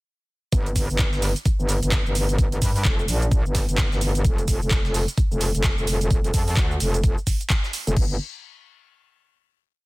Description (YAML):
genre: bass house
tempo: 129 BPM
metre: 4/4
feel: swing 60% on 16ths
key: G minor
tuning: A4 = 440 Hz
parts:
  - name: metallic wobble bass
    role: bass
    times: 0.5-8.2 s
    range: F1 to G2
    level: -23 LUFS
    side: equal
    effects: chorus, overdrive, sidechain pumping
  - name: breakbeat sampler-style drum kit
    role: drums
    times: 0.5-7.9 s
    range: hi-hat, snare drum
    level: -37 LUFS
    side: right 2 dB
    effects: none
  - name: electronic kick drum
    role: drums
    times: 0.5-8.1 s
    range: none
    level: -21 LUFS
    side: equal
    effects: overdrive
  - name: garage drum kit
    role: drums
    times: 0.5-8.1 s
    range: crash cymbal, handclaps, hi-hat, shaker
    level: -28 LUFS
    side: right 1 dB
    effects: overdrive
room: little or no reverb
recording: dense, heavily limited modern master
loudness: -20 LUFS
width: side -22 dB against mid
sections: 0.5-8.0 drop; 8.0-9.8 final chord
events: drop 0.5-8.0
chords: none